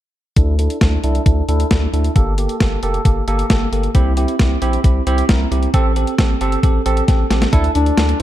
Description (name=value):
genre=synth-pop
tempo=134 BPM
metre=4/4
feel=straight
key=unclear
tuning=A4 = 440 Hz
part: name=barky tine electric piano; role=accompaniment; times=0.4-8.2 s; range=Bb3 to Bb4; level=-20 LUFS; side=right 2 dB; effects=analog chorus, low-pass filter
part: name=round analog bass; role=bass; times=0.4-8.1 s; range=F1 to D2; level=-18 LUFS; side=equal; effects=none
part: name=clean 12-bit digital drum machine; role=drums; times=0.4-8.2 s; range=hi-hat, kick drum, snare drum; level=-16 LUFS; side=equal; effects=none
part: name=mellow duduk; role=melody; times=7.8-8.2 s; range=D4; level=-17 LUFS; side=left 3 dB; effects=none
room=light reverb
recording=dark, warm production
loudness=-14 LUFS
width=side -13 dB against mid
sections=0.4-7.5 A section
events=filter sweep on tine electric piano 0.4-7.5; drum fill 7.1-7.5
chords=0.4 Dsus2; 2.2 Gmadd9; 3.9 C; 5.7 Am7; 7.5 Dsus2